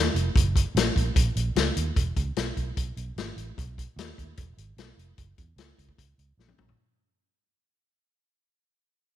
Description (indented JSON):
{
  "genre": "blues rock power trio and southern rock",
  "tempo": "149 BPM",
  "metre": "4/4",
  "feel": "straight",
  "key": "unclear",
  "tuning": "A4 = 440 Hz",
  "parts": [
    { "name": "vintage muted fingered electric bass", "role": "bass", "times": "0.0-6.7 s", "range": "E1 to E2", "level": "-29 LUFS", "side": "right 2 dB", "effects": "none" },
    { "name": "vintage drum kit", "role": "drums", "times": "0.2-6.8 s", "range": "hi-hat, kick drum, snare drum, toms", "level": "-25 LUFS", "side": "left 2 dB", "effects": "none" }
  ],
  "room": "light reverb",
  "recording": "1960s-style stereo",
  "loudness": "-24 LUFS",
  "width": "side -12 dB against mid",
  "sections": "0.0-6.8 A section",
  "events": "fade-out 0.0-6.8; drum fill 6.4-6.8",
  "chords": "none"
}